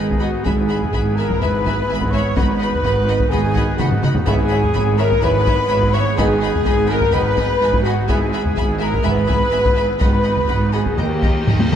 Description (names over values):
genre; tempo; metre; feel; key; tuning
cinematic, epic orchestral film score; 126 BPM; 4/4; straight; unclear; A4 = 440 Hz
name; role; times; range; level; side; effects
warm symphonic violin section; melody; 0.0-11.8 s; A#5 to B5; -31 LUFS; left 2 dB; none
hollow concert flute; second line; 0.0-11.8 s; F#5 to C#6; -28 LUFS; left 3 dB; none
warm symphonic violin section; second line; 0.0-11.8 s; C#5 to G#5; -31 LUFS; left 4 dB; none
rich symphonic viola section; accompaniment; 0.0-11.7 s; F#4 to C#5; -28 LUFS; right 1 dB; none
clear trombone section; sustained chords; 0.0-11.2 s; D#3 to B3; -30 LUFS; right 4 dB; none
mellow French horn section; sustained chords; 0.0-11.8 s; G3 to C#5; -23 LUFS; left 4 dB; none
pipe organ, soft reed; sustained chords; 0.0-11.8 s; A#3 to D#5; -30 LUFS; left 1 dB; none
dark trumpet section; stabs; 0.0-11.8 s; F#4 to C#5; -26 LUFS; right 1 dB; none
rich studio cello section; bass; 0.0-11.8 s; D#2 to G#2; -23 LUFS; right 3 dB; none
rich symphonic double bass section; bass; 0.0-11.8 s; G#1 to D#2; -22 LUFS; right 2 dB; none
taiko ensemble; drums; 0.1-11.8 s; none; -21 LUFS; left 1 dB; none
reverse cymbal; sound effects; 11.7-11.8 s; none; barely audible; none; none
room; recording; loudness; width
moderate scoring stage reverb, RT60 1.6 s; none; -15 LUFS; side -9 dB against mid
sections
0.0-11.8 A section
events
drum fill 3.8-4.3, 11.5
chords
0.5 E/G#; 2.4 B/G#; 4.3 C#m7/G#; 6.2 G#m; 8.1 E/G#; 10.0 B/G#; 11.0 D#